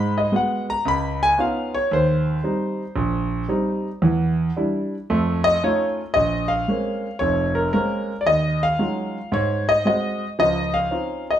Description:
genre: solo jazz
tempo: 113 BPM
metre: 4/4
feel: swing 68% on 8ths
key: Bb minor from 6.1 s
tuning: A4 = 439 Hz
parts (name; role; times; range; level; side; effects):
- clear concert grand piano; solo; 0.0-11.4 s; F1 to B5; -19 LUFS; equal; none
room: wet large studio reverb, RT60 0.9 s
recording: band playing live in one room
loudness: -19 LUFS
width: side -10 dB against mid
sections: 0.0-6.1 A section; 6.1-11.4 B section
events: grand piano solo 0.0-6.1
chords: 0.0 G#m7; 0.9 C#9; 1.9 Eb6; 4.0 Em7; 5.1 Faug7; 6.1 Bbm9; 8.3 Ebm11; 9.3 Ab7; 10.4 Dbmaj9

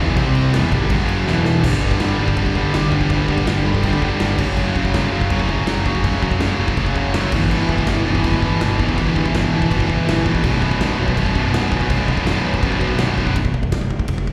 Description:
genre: heavy metal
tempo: 164 BPM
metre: 4/4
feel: straight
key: B minor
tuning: A4 = 441 Hz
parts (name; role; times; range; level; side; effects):
- heavy high-gain guitar; riff; 0.0-13.4 s; B1 to C4; -24 LUFS; equal; distortion, slapback echo
- high-gain distorted guitar; riff; 0.0-13.3 s; B1 to C4; -24 LUFS; equal; distortion, slapback echo
- fuzz picked electric bass; bass; 0.0-14.3 s; B0 to G2; -24 LUFS; equal; overdrive
- big rock drum kit; drums; 0.2-14.3 s; crash cymbal, kick drum, ride cymbal, snare drum; -24 LUFS; equal; none
room: small room ambience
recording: live gig heard through the venue's PA, recital hall reverb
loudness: -18 LUFS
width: mono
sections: 0.0-1.6 A section; 1.6-13.4 B section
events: drum fill 1.3-1.6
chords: 0.2 C5; 0.5 E5; 0.9 F#5; 1.3 E5; 1.6 G5; 4.4 F#5; 7.3 Em/G; 10.4 B5

